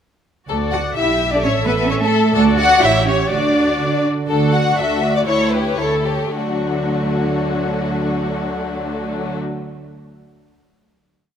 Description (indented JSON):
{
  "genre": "quick classical-period movement for string orchestra",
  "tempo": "105-130 BPM",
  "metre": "2/4",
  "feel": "straight",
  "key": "D major",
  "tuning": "A4 = 440 Hz",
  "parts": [
    { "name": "rich studio violin section", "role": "melody", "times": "0.5-9.4 s", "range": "F#4 to F#5", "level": "-22 LUFS", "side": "left 4 dB", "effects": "none" },
    { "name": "rich chamber violin section", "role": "second line", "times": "0.5-9.4 s", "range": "A3 to F#5", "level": "-21 LUFS", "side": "left 3 dB", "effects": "none" },
    { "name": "rich chamber viola section", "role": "accompaniment", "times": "0.5-9.4 s", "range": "D3 to E5", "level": "-23 LUFS", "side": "equal", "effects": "none" },
    { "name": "dark chamber cello section", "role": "bass", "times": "0.5-9.4 s", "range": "D2 to F#4", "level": "-20 LUFS", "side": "right 3 dB", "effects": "none" },
    { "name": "rich chamber double bass section", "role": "bass", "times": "0.5-4.3 s", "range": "A1 to D3", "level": "-24 LUFS", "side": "right 4 dB", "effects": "none" }
  ],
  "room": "moderate concert hall reverb, RT60 2.1 s",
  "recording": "none",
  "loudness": "-15 LUFS",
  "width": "side -8 dB against mid",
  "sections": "0.5-4.3 A section; 4.3-6.4 coda; 6.4-8.6 final chord",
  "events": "slowing down 3.8-6.4",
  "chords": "0.5 D; 1.0 G/B; 1.4 A; 2.4 D; 2.8 A7; 3.3 D; 5.3 A7/D; 6.4 D"
}